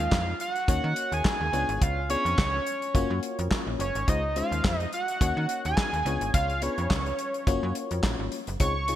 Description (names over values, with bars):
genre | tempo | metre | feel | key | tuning
early-eighties boogie funk | 106 BPM | 4/4 | swing 56% on 16ths | Db major | A4 = 438 Hz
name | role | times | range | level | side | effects
fat analog lead | melody | 0.0-9.0 s | Db5 to Db6 | -29 LUFS | right 1 dB | chorus
FM electric piano | accompaniment | 0.0-9.0 s | C3 to Db5 | -33 LUFS | left 4 dB | chorus
slap-like FM bass | bass | 0.0-9.0 s | Gb1 to Eb3 | -30 LUFS | equal | none
damped 70s drum kit | drums | 0.0-9.0 s | handclaps, hi-hat, kick drum, snare drum | -28 LUFS | equal | gated reverb
room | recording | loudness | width
light reverb, small room ambience | bright 1980s-style digital production | -24 LUFS | side -12 dB against mid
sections
0.0-9.0 A section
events
none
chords
0.0 Dbadd9; 0.7 Ebm7; 1.5 Db7b9; 2.9 Gbmaj7; 4.1 Dbmaj9; 5.2 Ebm7; 6.1 Db7b9; 7.5 Gbmaj7